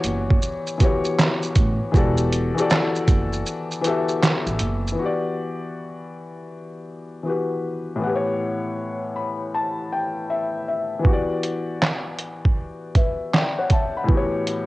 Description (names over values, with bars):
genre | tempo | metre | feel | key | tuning
lo-fi hip hop | 79 BPM | 4/4 | swing 64% on 16ths | E dorian | A4 = 440 Hz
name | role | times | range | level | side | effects
felt-muted upright piano | accompaniment | 0.0-14.7 s | A2 to B5 | -24 LUFS | left 2 dB | low-pass filter
upright bass | bass | 0.0-4.9 s | E1 to A1 | -24 LUFS | right 1 dB | tube saturation
trip hop sampler-style drum kit | drums | 0.0-5.0, 11.0-14.7 s | handclaps, hi-hat, kick drum, shaker, snare drum | -19 LUFS | right 1 dB | vintage 12-bit sampler grit, cassette tape
room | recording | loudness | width
moderate spring reverb, RT60 1.7 s | home recording on cassette, nothing above 10.9 kHz | -20 LUFS | side -18 dB against mid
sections
0.0-5.0 A section; 5.0-14.7 B section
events
break 3.5-5.0; felt piano fill 8.8-11.1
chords
0.0 Em9; 1.9 Em11; 5.0 Em9; 8.0 A13; 11.1 Em9; 14.1 A13